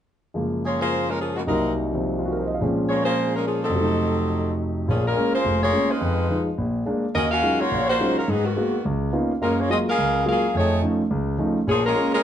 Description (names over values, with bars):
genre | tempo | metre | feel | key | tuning
jazz | 212 BPM | 4/4 | swing 60% on 8ths | Bb minor | A4 = 440 Hz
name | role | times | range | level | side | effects
warm concert grand piano | accompaniment | 0.3-12.1 s | F1 to F5 | -22 LUFS | equal | none
clear saxophone section | melody | 0.7-12.2 s | Db3 to F5 | -22 LUFS | left 1 dB | none
room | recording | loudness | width
moderate large studio reverb, RT60 0.8 s | dark, warm production, nothing above 10.6 kHz | -20 LUFS | side -10 dB against mid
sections
0.3-4.9 A section; 4.9-12.2 B section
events
none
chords
0.3 Gbmaj9; 1.5 Cm7b5; 2.6 Bbm7; 3.7 F7b9; 4.9 Bbm7; 6.0 Fm7b5; 6.6 Bb7; 7.1 Ebm11; 8.3 Abm9; 8.8 Db13; 9.4 Gbmaj9; 10.5 F7alt; 11.7 Bbm7